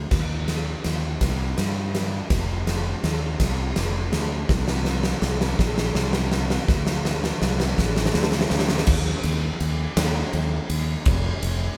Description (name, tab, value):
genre	post-rock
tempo	55 BPM (dotted quarters)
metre	6/8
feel	straight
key	unclear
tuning	A4 = 439 Hz
part	fuzz fingered electric bass	bass	0.0-11.7 s	F1 to G2	-28 LUFS	equal	overdrive
part	huge arena drum kit	drums	0.1-11.6 s	crash cymbal, kick drum, ride cymbal, snare drum	-26 LUFS	equal	none
room	light reverb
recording	band playing live in one room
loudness	-24 LUFS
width	mono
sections	0.0-8.9 A section; 8.9-11.8 B section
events	build-up 0.0-8.9; drum fill 0.0-8.9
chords	none